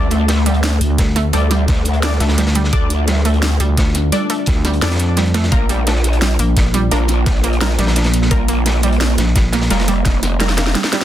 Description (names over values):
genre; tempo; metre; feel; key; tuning
dark technical drum and bass; 172 BPM; 4/4; straight; unclear; A4 = 439 Hz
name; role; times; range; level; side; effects
deep dark ambient pad; sustained chords; 0.0-11.0 s; A3 to D5; -24 LUFS; equal; chorus, built-in reverb, sidechain pumping
analog pluck; arpeggios; 0.0-11.0 s; G3 to D4; -23 LUFS; right 4 dB; chorus, sidechain pumping, tape echo
orchestra-hit-like synth stab; stabs; 0.0-10.5 s; Bb3 to D5; -26 LUFS; left 2 dB; built-in reverb, tape echo
growl bass; bass; 0.0-10.8 s; F1 to D2; -16 LUFS; equal; chorus, overdrive
crunchy breakbeat drum kit; drums; 0.1-11.0 s; hi-hat, snare drum; -25 LUFS; equal; high-pass filter on hats, high-pass filter on snare, high-pass filter on room
drum and bass drum kit; drums; 0.1-11.0 s; hi-hat, snare drum; -21 LUFS; equal; overdrive
growling FM bass; bass; 0.8-9.7 s; Bb1 to F2; -16 LUFS; equal; none
electronic kick drum; drums; 1.0-10.1 s; none; -16 LUFS; equal; overdrive
room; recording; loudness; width
little or no reverb; dense, heavily limited modern master; -13 LUFS; side -12 dB against mid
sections
0.0-11.0 A section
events
drum fill 10.4-11.0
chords
0.0 Dm; 5.5 Bb